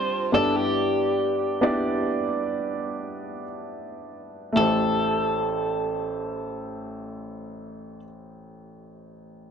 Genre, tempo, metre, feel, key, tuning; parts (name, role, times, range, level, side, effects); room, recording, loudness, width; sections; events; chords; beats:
pop ballad; free time; A minor; A4 = 440 Hz
electric guitar at the edge of break-up; melody; 0.0-8.0 s; G4 to C5; -26 LUFS; left 1 dB; slapback echo
dark upright piano; accompaniment; 0.0-9.5 s; A1 to D5; -26 LUFS; right 1 dB
warm studio string section; sustained chords; 0.0-0.8 s; G3 to F4; -33 LUFS; left 3 dB
moderate booth ambience, RT60 0.2 s; dry, close 1970s-style studio recording; -22 LUFS; side -7 dB against mid
0.0-4.6 A section; 4.6-8.8 B section
slowing down 0.0-4.6
0.3 Em7/G; 4.6 Am7
free time